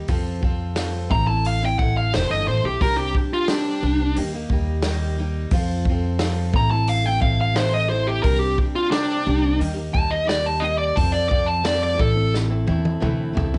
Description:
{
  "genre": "folk rock and heartland rock",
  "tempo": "88 BPM",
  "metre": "4/4",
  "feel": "straight",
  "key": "unclear",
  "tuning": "A4 = 440 Hz",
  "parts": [
    { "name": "picked steel-string acoustic guitar", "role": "accompaniment", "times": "0.0-13.6 s", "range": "A2 to A4", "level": "-31 LUFS", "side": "equal", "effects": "cassette tape" },
    { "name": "upright bass", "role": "bass", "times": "0.0-13.6 s", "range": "E1 to F2", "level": "-26 LUFS", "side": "equal", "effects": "none" },
    { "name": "natural country drum kit", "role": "drums", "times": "0.1-13.6 s", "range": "hi-hat, kick drum, snare drum, toms", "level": "-27 LUFS", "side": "equal", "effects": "cassette tape" },
    { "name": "dark smooth lead guitar", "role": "melody", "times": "1.1-12.3 s", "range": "D4 to Bb5", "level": "-24 LUFS", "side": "equal", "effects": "overdrive, plate reverb" }
  ],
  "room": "light reverb",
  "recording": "home recording on cassette, nothing above 10.7 kHz",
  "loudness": "-21 LUFS",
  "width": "mono",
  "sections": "0.0-13.6 A section",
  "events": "lead electric guitar solo 0.0-13.6; drum fill 12.3-13.6",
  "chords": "0.1 F; 1.1 Am; 2.8 Csus2; 4.2 Eb; 5.5 F; 6.5 Am; 8.2 Csus2; 9.6 Eb; 11.0 F; 12.0 Am"
}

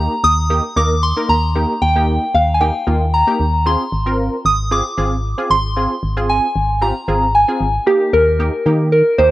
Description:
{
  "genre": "dance-pop",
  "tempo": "114 BPM",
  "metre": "4/4",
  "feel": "straight",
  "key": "Eb major",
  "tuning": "A4 = 440 Hz",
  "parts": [
    { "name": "soft synth bell", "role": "melody", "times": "0.0-9.3 s", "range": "G4 to Eb6", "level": "-16 LUFS", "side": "equal", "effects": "chorus, phaser, cassette tape, analog delay" },
    { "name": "funky polysynth comp", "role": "accompaniment", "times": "0.0-9.3 s", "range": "Bb3 to Bb4", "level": "-22 LUFS", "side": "equal", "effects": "chorus, cassette tape, plate reverb" },
    { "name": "organ-like FM bass", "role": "bass", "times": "0.0-9.3 s", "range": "Ab1 to Eb3", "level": "-18 LUFS", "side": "equal", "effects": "none" }
  ],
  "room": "moderate small room reverb, RT60 0.5 s",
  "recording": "home recording on cassette",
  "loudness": "-13 LUFS",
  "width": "side -16 dB against mid",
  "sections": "0.0-7.9 A section; 7.9-9.3 B section",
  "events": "build-up 7.9-9.3",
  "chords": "0.0 Eb; 3.7 Ab6; 7.9 Eb"
}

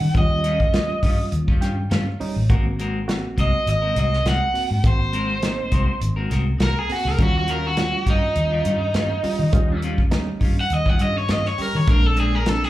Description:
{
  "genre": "straight-eighth soul blues",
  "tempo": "102 BPM",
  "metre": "4/4",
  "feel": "swing 54% on 16ths",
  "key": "Eb mixolydian",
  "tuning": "A4 = 440 Hz",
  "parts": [
    { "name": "overdriven electric guitar", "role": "melody", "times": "0.0-12.7 s", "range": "Eb4 to Gb5", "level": "-23 LUFS", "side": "right 1 dB", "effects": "slapback echo" },
    { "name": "barky reed electric piano", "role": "accompaniment", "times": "0.0-12.7 s", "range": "G3 to G5", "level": "-29 LUFS", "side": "right 3 dB", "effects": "overdrive, fast tremolo, slapback echo" },
    { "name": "clean electric guitar", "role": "stabs", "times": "0.0-12.7 s", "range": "Bb2 to Bb4", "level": "-30 LUFS", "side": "left 4 dB", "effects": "spring reverb, slapback echo" },
    { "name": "vintage muted fingered electric bass", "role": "bass", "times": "0.0-12.6 s", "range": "Ab1 to Eb3", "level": "-22 LUFS", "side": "equal", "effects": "none" },
    { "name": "warm soul drum kit", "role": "drums", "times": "0.1-12.7 s", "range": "hi-hat, kick drum, snare drum", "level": "-22 LUFS", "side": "equal", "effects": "none" }
  ],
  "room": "small room ambience",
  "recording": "live gig heard through the venue's PA, club reverb",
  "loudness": "-18 LUFS",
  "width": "side -15 dB against mid",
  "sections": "0.0-12.7 A section",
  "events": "overdriven electric guitar solo 0.0-12.7; reed electric piano fill 1.3-2.5",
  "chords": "0.0 Eb9; 2.5 Ab9; 7.2 Eb9; 11.9 Bb9"
}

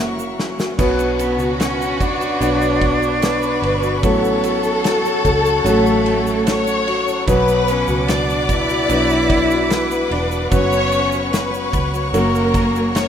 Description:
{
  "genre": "pop ballad",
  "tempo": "74 BPM",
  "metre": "4/4",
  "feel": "straight",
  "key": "B minor",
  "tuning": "A4 = 441 Hz",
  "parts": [
    { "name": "warm cello", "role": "melody", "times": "0.0-13.1 s", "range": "A3 to E4", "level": "-22 LUFS", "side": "right 1 dB", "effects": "none" },
    { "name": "warm studio violin section", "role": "second line", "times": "0.0-13.1 s", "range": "F#4 to D5", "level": "-21 LUFS", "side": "left 2 dB", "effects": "none" },
    { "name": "warm concert grand piano", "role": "accompaniment", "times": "0.0-13.1 s", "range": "A2 to C#5", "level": "-22 LUFS", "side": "equal", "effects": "none" },
    { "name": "clear studio string section", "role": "sustained chords", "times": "0.0-13.1 s", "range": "A4 to D6", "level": "-26 LUFS", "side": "left 3 dB", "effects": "none" },
    { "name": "fingerpicked steel-string acoustic guitar", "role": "arpeggios", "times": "0.0-13.1 s", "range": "F#2 to A4", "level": "-26 LUFS", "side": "left 2 dB", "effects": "ping-pong delay" },
    { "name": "vintage muted fingered electric bass", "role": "bass", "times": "0.0-13.1 s", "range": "E1 to C#2", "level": "-25 LUFS", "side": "right 1 dB", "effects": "none" },
    { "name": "egg shaker", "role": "percussion", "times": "0.2-13.1 s", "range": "none", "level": "-38 LUFS", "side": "right 6 dB", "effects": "none" },
    { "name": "loose indie drum kit", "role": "drums", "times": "0.4-13.1 s", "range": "crash cymbal, kick drum, ride cymbal, snare drum", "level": "-24 LUFS", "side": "equal", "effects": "none" }
  ],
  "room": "moderate lush hall reverb, RT60 2.0 s, studio reverb",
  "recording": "rough home demo mix",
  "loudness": "-15 LUFS",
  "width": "side -8 dB against mid",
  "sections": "0.8-13.1 A section",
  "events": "drum fill 0.0-0.8",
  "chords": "0.0 F#7; 0.8 Bmadd9; 4.0 F#m/A; 7.3 Bm; 10.5 F#sus4; 12.1 F#"
}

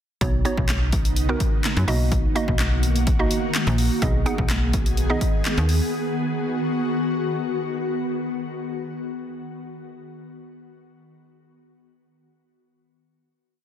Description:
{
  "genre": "dance-pop",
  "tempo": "126 BPM",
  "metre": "4/4",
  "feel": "straight",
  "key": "B major",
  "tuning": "A4 = 441 Hz",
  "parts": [
    { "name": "mallet-like synth pluck", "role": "accompaniment", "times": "0.2-5.6 s", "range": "A#3 to F#5", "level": "-27 LUFS", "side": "right 3 dB", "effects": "chorus, sidechain pumping" },
    { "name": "ethereal airy pad", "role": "sustained chords", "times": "0.8-7.8 s", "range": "C#3 to G#4", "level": "-26 LUFS", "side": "left 1 dB", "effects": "ensemble chorus, built-in reverb, sidechain pumping" },
    { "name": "slap-like FM bass", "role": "bass", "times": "0.2-5.8 s", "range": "A#1 to F#2", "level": "-22 LUFS", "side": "equal", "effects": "sidechain pumping" },
    { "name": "house drum kit", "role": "drums", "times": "0.2-5.8 s", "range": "handclaps, hi-hat, kick drum, snare drum", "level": "-23 LUFS", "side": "equal", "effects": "none" }
  ],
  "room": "light reverb",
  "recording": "dense, heavily limited modern master",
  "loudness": "-20 LUFS",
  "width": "side -10 dB against mid",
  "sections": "0.2-7.8 chorus",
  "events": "none",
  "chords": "0.2 Badd9; 1.9 D#m/B; 4.0 G#m/B; 5.9 B"
}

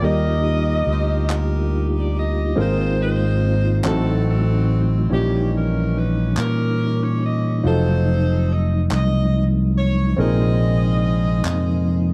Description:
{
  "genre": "slow gospel",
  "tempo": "47 BPM (dotted quarters)",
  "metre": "6/8",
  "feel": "straight",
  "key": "Eb major",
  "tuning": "A4 = 439 Hz",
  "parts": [
    { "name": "breathy trumpet", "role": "melody", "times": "0.0-1.8 s", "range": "Eb5", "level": "-30 LUFS", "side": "equal", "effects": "none" },
    { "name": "edgy saxophone section", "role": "melody", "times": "0.0-12.1 s", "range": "C4 to Eb5", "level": "-30 LUFS", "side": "equal", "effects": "none" },
    { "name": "warm grand piano", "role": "accompaniment", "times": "0.0-12.1 s", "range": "Ab2 to Bb4", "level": "-28 LUFS", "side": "equal", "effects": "none" },
    { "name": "mellow tonewheel organ", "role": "sustained chords", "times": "0.0-12.1 s", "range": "C3 to G4", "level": "-27 LUFS", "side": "equal", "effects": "fast rotary speaker, chorus vibrato" },
    { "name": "fingered electric bass", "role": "bass", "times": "0.0-12.1 s", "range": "F1 to Bb2", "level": "-21 LUFS", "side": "equal", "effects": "none" },
    { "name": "group handclap", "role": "percussion", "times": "1.3-11.8 s", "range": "none", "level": "-31 LUFS", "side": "equal", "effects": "none" }
  ],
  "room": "light reverb",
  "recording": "dark, warm production",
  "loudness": "-19 LUFS",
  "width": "mono",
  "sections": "0.0-2.6 A section; 2.6-12.1 B section",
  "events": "none",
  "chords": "0.0 Ebmaj7; 2.6 Ab69; 3.8 Adim7; 5.1 Eb7b9/Bb; 7.7 F7b9; 10.2 Bb9sus4"
}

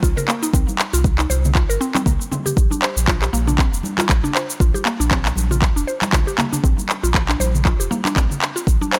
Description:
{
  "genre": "afro house",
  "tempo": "118 BPM",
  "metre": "4/4",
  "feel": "swing 56% on 16ths",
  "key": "unclear",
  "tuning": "A4 = 440 Hz",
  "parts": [
    { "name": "mallet-like synth pluck", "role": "arpeggios", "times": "0.0-9.0 s", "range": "Bb3 to C5", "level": "-27 LUFS", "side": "equal", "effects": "chorus, sidechain pumping, delay" },
    { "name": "warm sub bass", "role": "bass", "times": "0.0-8.8 s", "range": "F1 to C2", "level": "-23 LUFS", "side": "equal", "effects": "sidechain pumping" },
    { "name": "electronic kick drum", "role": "drums", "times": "0.0-8.8 s", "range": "none", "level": "-20 LUFS", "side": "equal", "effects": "none" },
    { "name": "electronic shaker and handclaps", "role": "drums", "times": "0.0-9.0 s", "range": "none", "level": "-24 LUFS", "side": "equal", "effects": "none" },
    { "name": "congas", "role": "percussion", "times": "0.2-8.9 s", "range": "none", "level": "-29 LUFS", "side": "equal", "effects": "none" }
  ],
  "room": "light reverb",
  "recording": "none",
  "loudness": "-19 LUFS",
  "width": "mono",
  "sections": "0.0-9.0 A section",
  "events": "none",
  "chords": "0.0 C7(no3); 2.6 Bbadd9"
}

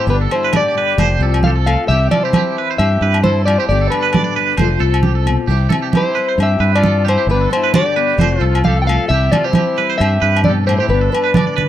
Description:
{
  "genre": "highlife guitar band",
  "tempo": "133 BPM",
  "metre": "4/4",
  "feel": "swing 55% on 16ths",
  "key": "C major",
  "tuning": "A4 = 440 Hz",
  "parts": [
    { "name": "electric guitar at the edge of break-up", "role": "melody", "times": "0.0-11.7 s", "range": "B4 to G5", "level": "-18 LUFS", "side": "left 2 dB", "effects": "none" },
    { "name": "warm trumpet", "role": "second line", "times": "0.0-11.7 s", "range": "D4 to B4", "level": "-27 LUFS", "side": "left 3 dB", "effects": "none" },
    { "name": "fingerpicked steel-string acoustic guitar", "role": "accompaniment", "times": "0.0-11.7 s", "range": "F2 to G4", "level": "-23 LUFS", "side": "left 7 dB", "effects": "none" },
    { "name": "twangy electric guitar", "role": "arpeggios", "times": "0.0-11.7 s", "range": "G4 to D5", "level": "-21 LUFS", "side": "right 9 dB", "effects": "harmonic tremolo" },
    { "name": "fingered electric bass", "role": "bass", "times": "0.1-11.1 s", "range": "F1 to G2", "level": "-15 LUFS", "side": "equal", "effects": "none" },
    { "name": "congas", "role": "percussion", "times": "0.1-11.7 s", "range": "none", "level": "-18 LUFS", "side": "right 3 dB", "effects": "none" },
    { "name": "agogo bells", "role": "percussion", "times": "0.3-11.5 s", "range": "none", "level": "-25 LUFS", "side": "left 3 dB", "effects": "none" }
  ],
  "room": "light reverb",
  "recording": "none",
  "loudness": "-12 LUFS",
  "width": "side -12 dB against mid",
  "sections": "0.0-11.7 A section",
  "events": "none",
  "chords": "0.1 G; 1.0 F; 1.9 C; 3.7 G; 4.6 F; 5.5 C; 7.3 G; 8.2 F; 9.1 C; 10.9 G"
}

